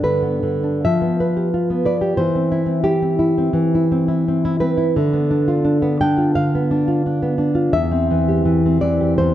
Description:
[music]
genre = romantic piece for solo classical guitar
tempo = 72-89 BPM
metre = 4/4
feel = rubato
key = C major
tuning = A4 = 440 Hz
[part]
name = nylon-string guitar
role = solo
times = 0.0-9.3 s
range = E2 to G5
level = -16 LUFS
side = equal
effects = none
[sound]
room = light reverb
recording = dark, warm production, nothing above 10.5 kHz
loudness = -16 LUFS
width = side -12 dB against mid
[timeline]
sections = 0.0-9.3 A section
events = none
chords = 0.0 G; 0.8 G7/F; 2.2 C/E; 5.0 Bdim/D; 7.8 C/E

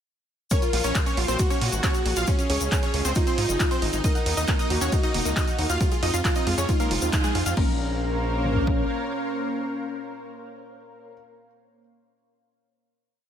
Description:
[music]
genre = uplifting trance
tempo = 136 BPM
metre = 4/4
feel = straight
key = Bb minor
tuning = A4 = 440 Hz
[part]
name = supersaw stab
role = melody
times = 0.5-11.1 s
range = Ab3 to F5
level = -30 LUFS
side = right 1 dB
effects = sidechain pumping, digital delay
[part]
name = dark grand piano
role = second line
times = 0.5-11.1 s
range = Db5 to F6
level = -38 LUFS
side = equal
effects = sidechain pumping, ping-pong delay
[part]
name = warm velvety synth lead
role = second line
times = 0.5-11.1 s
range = Db4 to Bb4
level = -30 LUFS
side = equal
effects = chorus, ping-pong delay
[part]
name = lush unison pad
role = sustained chords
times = 0.8-11.1 s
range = Ab3 to F5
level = -34 LUFS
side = left 1 dB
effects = chorus, phaser, sidechain pumping
[part]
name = punchy analog drum machine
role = drums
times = 0.5-8.8 s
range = kick drum, toms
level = -24 LUFS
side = equal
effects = none
[part]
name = punchy analog drum machine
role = drums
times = 0.5-7.7 s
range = crash cymbal, handclaps, hi-hat, ride cymbal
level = -31 LUFS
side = right 1 dB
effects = none
[part]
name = tube shaker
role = percussion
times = 0.5-7.5 s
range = none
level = -35 LUFS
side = left 4 dB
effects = none
[part]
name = gritty driven synth bass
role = bass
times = 0.7-8.9 s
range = Eb1 to Bb2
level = -27 LUFS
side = equal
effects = sidechain pumping
[part]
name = wide unison pluck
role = arpeggios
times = 4.0-7.8 s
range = Ab3 to Gb5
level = -35 LUFS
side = left 1 dB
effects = sidechain pumping, ping-pong delay
[sound]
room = light reverb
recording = none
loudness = -21 LUFS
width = side -9 dB against mid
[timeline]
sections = 0.5-7.6 drop; 7.6-11.1 final chord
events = drop 0.5-7.6; band accent 7.1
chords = 0.5 Bbmadd9; 1.4 Gbadd9; 2.3 Db; 3.2 Ab; 4.0 Ebm; 5.8 Fm; 7.6 Bbmadd9

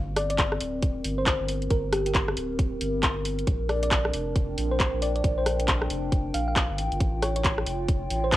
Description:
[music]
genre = UK garage, two-step garage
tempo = 136 BPM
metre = 4/4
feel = swing 61% on 16ths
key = G minor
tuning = A4 = 440 Hz
[part]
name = saturated sub bass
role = bass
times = 0.0-8.4 s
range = D1 to Bb1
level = -30 LUFS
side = equal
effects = sidechain pumping
[part]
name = warbly tape-like pad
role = texture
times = 0.0-8.4 s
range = C4 to G5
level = -32 LUFS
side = left 1 dB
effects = chorus, built-in reverb, sidechain pumping, cassette tape
[part]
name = thumb-piano-like synth pluck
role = melody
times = 0.2-8.4 s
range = G4 to F5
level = -31 LUFS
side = equal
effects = chorus, cassette tape, tape echo
[part]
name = garage drum kit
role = drums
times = 0.2-8.4 s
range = handclaps, hi-hat, rim click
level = -27 LUFS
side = equal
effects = cassette tape
[part]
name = electronic kick drum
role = drums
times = 0.4-8.4 s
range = none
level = -26 LUFS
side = equal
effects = cassette tape
[sound]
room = digital ambience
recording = home recording on cassette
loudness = -23 LUFS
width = side -15 dB against mid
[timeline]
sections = 0.0-8.4 A section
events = none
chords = 0.0 Gmadd11; 3.5 Bb6; 6.8 Aaug7

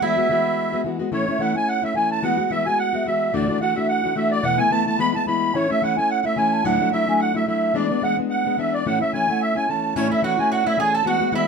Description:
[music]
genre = celtic folk, Celtic reel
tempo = 217 BPM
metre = 4/4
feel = swing 55% on 8ths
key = A major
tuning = A4 = 440 Hz
[part]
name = mellow hollow baroque flute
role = melody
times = 0.0-11.5 s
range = C#5 to B5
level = -22 LUFS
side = right 4 dB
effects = none
[part]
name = Irish bouzouki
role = second line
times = 0.0-0.8, 10.0-11.5 s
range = C#4 to A4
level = -28 LUFS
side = right 5 dB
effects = none
[part]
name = musette accordion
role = second line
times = 0.0-11.5 s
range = C#5 to B5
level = -26 LUFS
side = equal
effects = none
[part]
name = fingerpicked plugged-in steel-string acoustic guitar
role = accompaniment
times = 0.0-11.5 s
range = D2 to F#4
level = -23 LUFS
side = left 3 dB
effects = none
[sound]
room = moderate studio reverb, RT60 0.6 s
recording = minimal, uncompressed stereo recording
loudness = -18 LUFS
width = side -5 dB against mid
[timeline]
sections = 0.0-1.1 A section; 1.1-10.0 B section; 10.0-11.5 B section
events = none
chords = 0.0 Eadd9; 1.1 A; 2.2 Eadd9; 3.3 Dadd9; 4.4 Esus4; 5.0 E; 5.5 A; 6.6 Dadd9; 7.7 E7; 8.9 A

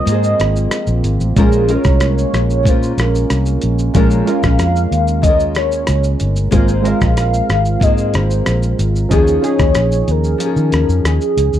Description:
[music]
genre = indie pop, bedroom pop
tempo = 93 BPM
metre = 4/4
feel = straight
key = Bb minor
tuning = A4 = 438 Hz
[part]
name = warm velvety synth lead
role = melody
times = 0.0-11.6 s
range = Ab4 to F5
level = -19 LUFS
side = equal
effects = analog chorus, tape echo
[part]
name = nylon-string guitar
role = accompaniment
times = 0.0-11.6 s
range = Bb2 to C5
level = -22 LUFS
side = left 6 dB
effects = lush chorus, vibrato effect
[part]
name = warm analog keys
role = accompaniment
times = 0.0-11.6 s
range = F3 to Bb4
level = -22 LUFS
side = right 6 dB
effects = chorus
[part]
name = mellow brass ensemble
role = sustained chords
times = 0.0-11.6 s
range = Eb3 to Ab4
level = -26 LUFS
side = right 6 dB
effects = stereo widening
[part]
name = vintage muted fingered electric bass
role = bass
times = 0.1-11.6 s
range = G1 to Eb3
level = -16 LUFS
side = equal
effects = none
[part]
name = dusty soul sampler-style drum kit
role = drums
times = 0.1-11.6 s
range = hi-hat, kick drum, rim click, shaker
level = -18 LUFS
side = equal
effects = none
[sound]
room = little or no reverb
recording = dry, close 1970s-style studio recording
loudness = -12 LUFS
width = side -11 dB against mid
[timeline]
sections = 0.0-11.6 A section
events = none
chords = 0.0 Ab69; 1.4 Bbm7; 6.5 Ab69; 9.1 Eb9sus4

